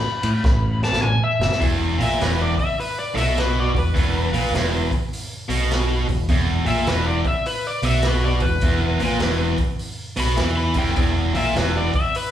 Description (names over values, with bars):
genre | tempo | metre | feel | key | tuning
blues rock power trio and southern rock | 102 BPM | 4/4 | swing 64% on 8ths | unclear | A4 = 440 Hz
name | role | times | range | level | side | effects
overdriven slide guitar | melody | 0.0-12.3 s | B4 to B5 | -25 LUFS | left 2 dB | none
growling fingered electric bass | bass | 0.2-11.9 s | E1 to A2 | -23 LUFS | equal | overdrive
raw garage drum kit | drums | 0.2-12.3 s | hi-hat, kick drum, ride cymbal, snare drum, toms | -24 LUFS | equal | none
distorted electric guitar | riff | 1.6-11.9 s | E2 to E3 | -22 LUFS | equal | overdrive
room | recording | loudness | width
moderate large studio reverb, RT60 0.9 s | band playing live in one room, small room reverb | -18 LUFS | side -11 dB against mid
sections
0.0-1.6 A section; 1.6-12.3 B section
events
electric slide guitar solo 0.0-1.6; drum fill 0.4-1.6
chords
0.0 A5; 1.6 E5